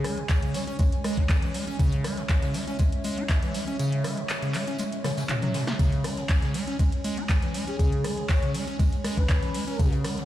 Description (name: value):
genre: acid house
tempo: 120 BPM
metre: 4/4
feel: straight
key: C# minor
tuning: A4 = 440 Hz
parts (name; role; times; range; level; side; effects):
- breathy flute-like synth lead; melody; 0.0-0.8, 7.7-9.9 s; G#4 to C#5; -35 LUFS; left 3 dB; wide subtle chorus, ping-pong delay
- dark analog pad; sustained chords; 0.0-10.2 s; G#3 to G#5; -33 LUFS; right 1 dB; chorus, sidechain pumping
- liquid acid bass; riff; 0.0-10.2 s; B2 to E4; -30 LUFS; equal; chorus, sidechain pumping
- electro analog drum machine; drums; 0.0-10.2 s; handclaps, hi-hat, ride cymbal, rim click, snare drum, toms; -33 LUFS; left 1 dB; none
- jazz brush drum kit; drums; 0.0-10.2 s; hi-hat, snare drum, tambourine; -43 LUFS; left 2 dB; high-pass filter on hats, high-pass filter on snare, high-pass filter on perc, high-pass filter on room
- electronic kick drum; drums; 0.3-9.9 s; none; -22 LUFS; equal; none
room: light reverb, studio reverb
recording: played on a big sound system in a bare room, stone room reverb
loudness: -23 LUFS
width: side -13 dB against mid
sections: 0.0-10.2 A section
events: kick drops out 3.8-5.8; drum fill 5.0-5.8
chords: 0.0 C#5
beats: 0.29 0.79 1.29 | 1.79 2.29 2.79 3.29 | 3.79 4.29 4.79 5.29 | 5.79 6.29 6.79 7.29 | 7.79 8.29 8.79 9.29 | 9.79